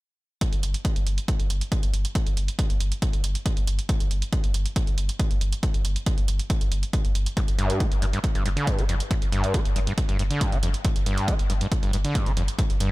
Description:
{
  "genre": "driving peak-time techno",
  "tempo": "138 BPM",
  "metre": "4/4",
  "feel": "straight",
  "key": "G minor",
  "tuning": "A4 = 435 Hz",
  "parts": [
    { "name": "electronic hi-hat", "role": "drums", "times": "0.4-12.9 s", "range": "none", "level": "-34 LUFS", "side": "right 5 dB", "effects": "sidechain pumping on hats" },
    { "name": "electronic kick drum", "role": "drums", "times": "0.4-12.7 s", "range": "none", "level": "-25 LUFS", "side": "equal", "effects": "none" },
    { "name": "saturated sub bass", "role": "bass", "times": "0.5-12.9 s", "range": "G1", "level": "-27 LUFS", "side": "equal", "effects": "overdrive, sidechain pumping, low-pass filter" },
    { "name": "screaming distorted acid line", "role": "riff", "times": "7.4-12.9 s", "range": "F2 to Bb3", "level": "-27 LUFS", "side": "equal", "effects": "distortion, chorus, sidechain pumping, ping-pong delay" }
  ],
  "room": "digital ambience",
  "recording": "none",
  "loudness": "-22 LUFS",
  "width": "side -20 dB against mid",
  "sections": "0.4-12.9 A section",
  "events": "none",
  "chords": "0.4 G5"
}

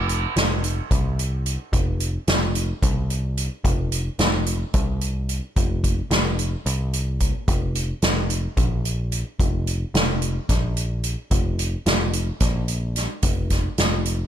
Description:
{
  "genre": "psychedelic rock",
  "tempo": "219 BPM (eighths)",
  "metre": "7/8",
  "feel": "straight",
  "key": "unclear",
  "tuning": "A4 = 441 Hz",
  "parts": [
    { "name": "overdriven picked electric bass", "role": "bass", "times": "0.0-14.2 s", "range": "F1 to C2", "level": "-24 LUFS", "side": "equal", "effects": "none" },
    { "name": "soft-mallet drum kit", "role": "drums", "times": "0.1-14.2 s", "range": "hi-hat, kick drum, snare drum", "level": "-22 LUFS", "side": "equal", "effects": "none" }
  ],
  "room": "little or no reverb",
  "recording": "none",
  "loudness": "-20 LUFS",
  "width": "side -10 dB against mid",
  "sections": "0.0-14.3 A section",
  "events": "none",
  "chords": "none"
}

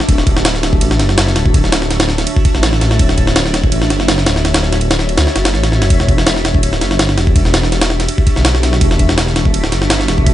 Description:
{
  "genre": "drum and bass, jungle",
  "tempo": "165 BPM",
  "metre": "4/4",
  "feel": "straight",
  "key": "unclear",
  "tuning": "A4 = 440 Hz",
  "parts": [
    { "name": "jungle sampler-style drum kit", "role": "drums", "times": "0.0-10.3 s", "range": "kick drum, ride cymbal, snare drum", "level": "-13 LUFS", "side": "equal", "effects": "none" },
    { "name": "detuned saw bass", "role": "bass", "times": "0.1-10.3 s", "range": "D1 to D2", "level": "-15 LUFS", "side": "equal", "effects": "none" }
  ],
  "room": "little or no reverb",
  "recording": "nothing above 10.5 kHz",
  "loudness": "-11 LUFS",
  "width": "side -13 dB against mid",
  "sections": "0.0-10.3 A section",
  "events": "kick drops out 5.2-5.9",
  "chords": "none"
}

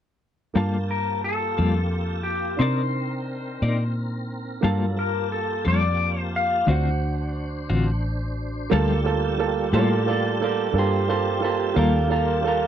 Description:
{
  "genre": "slow blues",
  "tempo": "59 BPM (dotted quarters)",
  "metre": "12/8",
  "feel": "straight",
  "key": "G minor",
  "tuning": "A4 = 440 Hz",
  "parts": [
    { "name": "clear concert grand piano", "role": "accompaniment", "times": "0.5-12.7 s", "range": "Bb3 to A5", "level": "-28 LUFS", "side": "right 9 dB", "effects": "none" },
    { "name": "clean electric guitar", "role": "accompaniment", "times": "0.6-12.0 s", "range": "D3 to D5", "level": "-24 LUFS", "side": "left 4 dB", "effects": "tremolo" },
    { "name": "tonewheel organ", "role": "sustained chords", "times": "0.6-12.7 s", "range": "F#3 to A5", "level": "-32 LUFS", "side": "equal", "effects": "slow rotary speaker, overdrive, chorus vibrato" },
    { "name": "vintage muted fingered electric bass", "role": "bass", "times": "0.6-12.7 s", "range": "A1 to C3", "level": "-25 LUFS", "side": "equal", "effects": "none" },
    { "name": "clean lap steel guitar", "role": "melody", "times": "0.9-8.0 s", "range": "G4 to F#5", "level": "-26 LUFS", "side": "left 3 dB", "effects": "slapback echo" },
    { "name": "electric guitar through a small old amp", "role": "second line", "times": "9.7-12.7 s", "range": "F4 to D5", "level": "-25 LUFS", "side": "right 2 dB", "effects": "none" }
  ],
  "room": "little or no reverb",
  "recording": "dry, close 1970s-style studio recording",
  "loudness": "-21 LUFS",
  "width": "side -9 dB against mid",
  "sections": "0.6-8.7 A section; 8.7-12.7 B section",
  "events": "clean electric guitar solo 8.7-12.7",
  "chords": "0.6 Gm9; 2.6 Cm9; 4.6 Gm9; 6.7 D7#9; 8.7 Gm9"
}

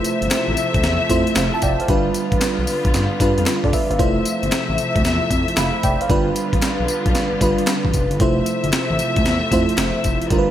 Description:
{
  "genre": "R&B, new jack swing",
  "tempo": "114 BPM",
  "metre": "4/4",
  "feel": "swing 66% on 16ths",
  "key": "F lydian",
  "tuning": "A4 = 439 Hz",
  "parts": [
    { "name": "FM electric piano with soft pad layer", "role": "accompaniment", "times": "0.0-10.5 s", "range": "G3 to B5", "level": "-21 LUFS", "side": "right 1 dB", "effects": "chorus" },
    { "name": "warm studio string section", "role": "sustained chords", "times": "0.0-10.5 s", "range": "C3 to E5", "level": "-23 LUFS", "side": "left 1 dB", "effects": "none" },
    { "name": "breakbeat sampler-style drum kit", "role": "drums", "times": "0.0-10.5 s", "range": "hi-hat, kick drum, snare drum, tambourine", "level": "-21 LUFS", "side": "equal", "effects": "gated reverb" },
    { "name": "smooth gliding synth bass", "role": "bass", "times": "0.2-10.5 s", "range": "F1 to G2", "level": "-23 LUFS", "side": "equal", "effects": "none" },
    { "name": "group handclap", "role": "percussion", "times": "0.3-9.9 s", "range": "none", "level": "-35 LUFS", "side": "left 5 dB", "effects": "none" }
  ],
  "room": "moderate plate reverb, RT60 2.1 s",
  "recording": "bright 1980s-style digital production",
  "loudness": "-16 LUFS",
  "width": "side -11 dB against mid",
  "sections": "0.0-10.5 A section",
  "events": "none",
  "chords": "0.0 Fmaj7; 1.9 G7; 4.0 Fmaj7; 6.1 G7; 8.2 Fmaj7"
}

